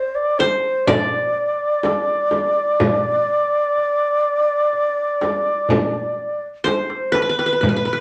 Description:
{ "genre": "Arabic maqam ensemble", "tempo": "125 BPM (eighths)", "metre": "10/8", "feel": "straight", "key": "unclear", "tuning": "A4 = 440 Hz", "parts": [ { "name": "qanun", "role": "melody", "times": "0.0-8.0 s", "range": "B4 to D5", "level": "-23 LUFS", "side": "equal", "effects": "none" }, { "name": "breathy reedy low ney", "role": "second line", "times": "0.0-8.0 s", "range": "B4 to D5", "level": "-21 LUFS", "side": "equal", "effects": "none" }, { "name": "darbuka", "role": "percussion", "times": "0.4-8.0 s", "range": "none", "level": "-30 LUFS", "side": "equal", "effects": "none" }, { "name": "frame drum", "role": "percussion", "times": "0.4-7.9 s", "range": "none", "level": "-24 LUFS", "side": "equal", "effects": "none" } ], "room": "wet studio reverb, RT60 0.6 s", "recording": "none", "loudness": "-19 LUFS", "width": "mono", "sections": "0.0-7.6 A section", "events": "drum fill 6.7-7.6", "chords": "none" }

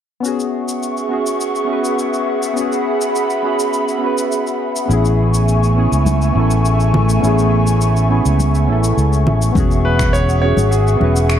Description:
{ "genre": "sunset chillout", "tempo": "103 BPM", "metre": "4/4", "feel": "straight", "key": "E major", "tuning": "A4 = 441 Hz", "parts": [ { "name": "soft electric-piano-like synth keys", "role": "accompaniment", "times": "0.2-11.4 s", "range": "B3 to B4", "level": "-20 LUFS", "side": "moving between left 6 dB and right 4 dB", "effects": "chorus, auto-pan, ping-pong delay" }, { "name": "airy breathy pad", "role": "sustained chords", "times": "0.2-11.4 s", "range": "A3 to C#6", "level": "-20 LUFS", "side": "right 1 dB", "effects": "chorus" }, { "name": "electronic shaker and finger snaps", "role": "drums", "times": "0.2-11.4 s", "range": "none", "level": "-28 LUFS", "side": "left 2 dB", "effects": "studio reverb" }, { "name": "fingered electric bass", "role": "bass", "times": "4.9-11.4 s", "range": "E1 to C#2", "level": "-14 LUFS", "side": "equal", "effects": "tube saturation" }, { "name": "congas", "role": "percussion", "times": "6.1-11.1 s", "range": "none", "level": "-22 LUFS", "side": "left 2 dB", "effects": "none" }, { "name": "electronic kick drum", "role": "drums", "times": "9.6-10.1 s", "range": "none", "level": "-18 LUFS", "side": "equal", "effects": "studio reverb" }, { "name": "clear concert grand piano", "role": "melody", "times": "9.8-11.4 s", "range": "G#4 to C#5", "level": "-20 LUFS", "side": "equal", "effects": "ping-pong delay" } ], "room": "moderate lush hall reverb, RT60 2.0 s", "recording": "dark, warm production", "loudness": "-13 LUFS", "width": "side -9 dB against mid", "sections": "0.2-9.6 A section; 9.6-11.4 B section", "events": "none", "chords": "0.2 E69; 4.9 Amaj7; 9.6 E69" }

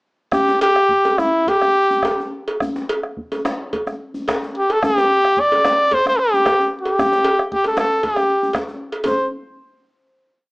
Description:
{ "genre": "west african traditional, West African drum ensemble", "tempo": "105-123 BPM", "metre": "4/4", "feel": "straight", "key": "unclear", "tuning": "A4 = 441 Hz", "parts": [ { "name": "warm trumpet", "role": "melody", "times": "0.3-9.3 s", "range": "E4 to D5", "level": "-15 LUFS", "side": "equal", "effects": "plate reverb" }, { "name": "bombo", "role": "percussion", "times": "0.3-9.3 s", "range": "none", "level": "-24 LUFS", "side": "right 1 dB", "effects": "none" }, { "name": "djembe", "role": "percussion", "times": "0.3-9.3 s", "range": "none", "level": "-27 LUFS", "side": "left 1 dB", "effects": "none" }, { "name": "cowbell", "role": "percussion", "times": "0.6-9.3 s", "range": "none", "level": "-25 LUFS", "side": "equal", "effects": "none" } ], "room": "light reverb", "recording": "small speaker sound", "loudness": "-15 LUFS", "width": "side -29 dB against mid", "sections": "0.3-9.0 A section; 9.0-10.5 final note", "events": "speeding up 0.3-10.5", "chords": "none" }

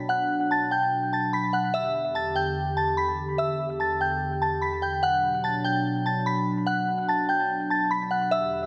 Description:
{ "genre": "hip hop", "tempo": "146 BPM", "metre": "4/4", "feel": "half-time", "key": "unclear", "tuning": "A4 = 440 Hz", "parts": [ { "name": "hollow soft pad", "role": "sustained chords", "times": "0.0-8.7 s", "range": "E2 to G4", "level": "-32 LUFS", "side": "equal", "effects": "chorus" }, { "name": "glassy synth bell", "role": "melody", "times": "0.1-8.7 s", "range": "E5 to B6", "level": "-27 LUFS", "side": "equal", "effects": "chorus, phaser, low-pass filter, tape echo" } ], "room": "light reverb", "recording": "echo-heavy mix", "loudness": "-26 LUFS", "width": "mono", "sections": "0.0-8.3 A section", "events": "none", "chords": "0.0 Bm; 1.7 Em7; 5.0 Bm" }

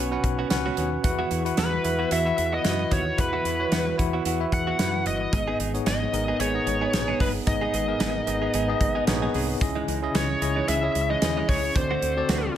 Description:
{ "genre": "1980s-style pop", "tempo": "112 BPM", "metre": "4/4", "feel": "swing 55% on 16ths", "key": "unclear", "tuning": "A4 = 440 Hz", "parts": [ { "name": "bell-like tine electric piano", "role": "accompaniment", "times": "0.0-12.6 s", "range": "G#2 to F#5", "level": "-28 LUFS", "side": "left 1 dB", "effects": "medium stereo tremolo" }, { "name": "direct-recorded clean electric guitar", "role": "riff", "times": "0.0-12.5 s", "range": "E3 to G#4", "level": "-33 LUFS", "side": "right 6 dB", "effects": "wide subtle chorus" }, { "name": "woody fretless electric bass", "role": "bass", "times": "0.0-12.5 s", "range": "G1 to F#2", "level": "-30 LUFS", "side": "equal", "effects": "none" }, { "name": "modern studio drum kit", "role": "drums", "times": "0.2-12.4 s", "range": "hi-hat, kick drum, snare drum", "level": "-27 LUFS", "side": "equal", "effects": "gated reverb" }, { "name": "biting lead guitar", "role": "melody", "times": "1.6-12.5 s", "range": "B4 to F#5", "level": "-28 LUFS", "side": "equal", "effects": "overdrive" } ], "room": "light reverb, studio reverb", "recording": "none", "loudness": "-22 LUFS", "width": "side -10 dB against mid", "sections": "0.0-12.6 A section", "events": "none", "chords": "0.0 Bsus2; 1.0 Esus2; 5.3 G#m; 9.6 C#madd9; 11.8 D7" }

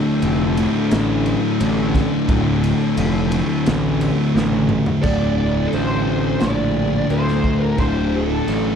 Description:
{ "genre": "stoner and doom metal", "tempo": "87 BPM", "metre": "4/4", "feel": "straight", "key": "unclear", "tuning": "A4 = 436 Hz", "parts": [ { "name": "thick fuzz guitar", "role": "riff", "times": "0.0-8.8 s", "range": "D2 to D3", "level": "-21 LUFS", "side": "left 10 dB", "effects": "distortion" }, { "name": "thick fuzz guitar", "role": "riff", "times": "0.0-8.8 s", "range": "D2 to D3", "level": "-22 LUFS", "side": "right 9 dB", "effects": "distortion" }, { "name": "fuzz picked electric bass", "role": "bass", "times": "0.2-8.8 s", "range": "D1 to D2", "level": "-22 LUFS", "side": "equal", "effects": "overdrive" }, { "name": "raw garage drum kit", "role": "drums", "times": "0.2-8.6 s", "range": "crash cymbal, kick drum, ride cymbal, snare drum, toms", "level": "-25 LUFS", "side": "equal", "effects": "none" }, { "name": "fuzz lead guitar", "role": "melody", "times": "5.0-8.8 s", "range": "A4 to D5", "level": "-24 LUFS", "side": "right 2 dB", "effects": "wah, distortion, slapback echo" } ], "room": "little or no reverb", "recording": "none", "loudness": "-16 LUFS", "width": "side -7 dB against mid", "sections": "0.0-5.0 A section; 5.0-8.8 B section", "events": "drum fill 4.4-5.0", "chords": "0.0 Dm; 5.0 D5" }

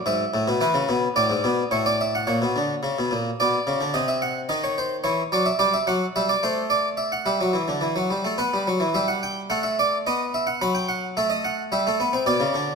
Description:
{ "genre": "classical, baroque-style two-part invention for harpsichord", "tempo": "108 BPM", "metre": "3/4", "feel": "straight", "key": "E minor from 5.6 s", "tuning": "A4 = 438 Hz", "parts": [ { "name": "harpsichord", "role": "solo", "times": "0.0-12.8 s", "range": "G#2 to B5", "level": "-21 LUFS", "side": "equal", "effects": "none" } ], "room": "wet recital hall reverb, RT60 1.3 s", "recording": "none", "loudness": "-21 LUFS", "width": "side -5 dB against mid", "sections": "0.0-2.3 A section; 2.3-8.9 B section; 8.9-12.8 A section", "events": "none", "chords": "0.1 E/G#; 0.6 E7; 1.7 A; 2.3 Bbm; 3.4 Bm; 3.9 Cdim; 5.0 C#m/E; 5.6 Em; 6.7 Asus4; 7.3 Em; 8.4 B5; 8.9 Em/G; 10.1 B; 10.6 B7/F#; 11.7 Em/G" }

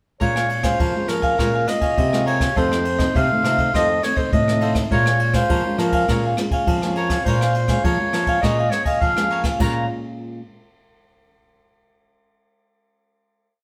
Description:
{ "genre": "samba and choro", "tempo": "102 BPM", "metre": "4/4", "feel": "straight", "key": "Bb minor", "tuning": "A4 = 440 Hz", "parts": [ { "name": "clear clarinet", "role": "melody", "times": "0.2-9.9 s", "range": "Bb4 to Bb5", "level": "-24 LUFS", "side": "equal", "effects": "none" }, { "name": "cavaquinho", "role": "accompaniment", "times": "0.2-9.8 s", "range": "F4 to Ab5", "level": "-28 LUFS", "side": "equal", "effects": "none" }, { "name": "nylon-string guitar", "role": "accompaniment", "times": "0.2-10.4 s", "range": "F2 to F4", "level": "-30 LUFS", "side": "equal", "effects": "none" }, { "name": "nylon-string guitar", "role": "bass", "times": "0.2-9.9 s", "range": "F2 to F3", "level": "-25 LUFS", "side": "equal", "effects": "none" }, { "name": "jazz brush drum kit", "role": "drums", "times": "0.2-9.7 s", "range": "crash cymbal, kick drum, ride cymbal, rim click", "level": "-26 LUFS", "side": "equal", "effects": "none" } ], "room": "moderate studio reverb, RT60 0.8 s", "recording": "band playing live in one room", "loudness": "-19 LUFS", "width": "mono", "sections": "0.2-9.6 A section; 9.6-11.9 final chord", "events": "none", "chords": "0.2 Bbm7; 2.6 F7; 4.9 Bbm7" }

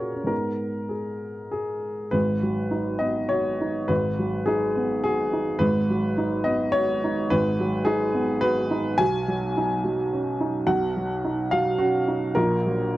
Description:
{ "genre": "neoclassical minimalist piano", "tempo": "97-110 BPM", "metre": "3/4", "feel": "rubato", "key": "G# minor", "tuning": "A4 = 444 Hz", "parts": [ { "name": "warm upright piano", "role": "solo", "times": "0.0-13.0 s", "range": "G#1 to G#5", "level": "-22 LUFS", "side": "equal", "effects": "none" } ], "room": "little or no reverb", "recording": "dry, close 1970s-style studio recording", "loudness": "-22 LUFS", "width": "side -16 dB against mid", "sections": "0.0-2.1 A section; 2.1-13.0 B section", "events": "none", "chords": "0.3 G#m; 2.1 G#m7; 9.0 Badd9; 12.4 F#/A#" }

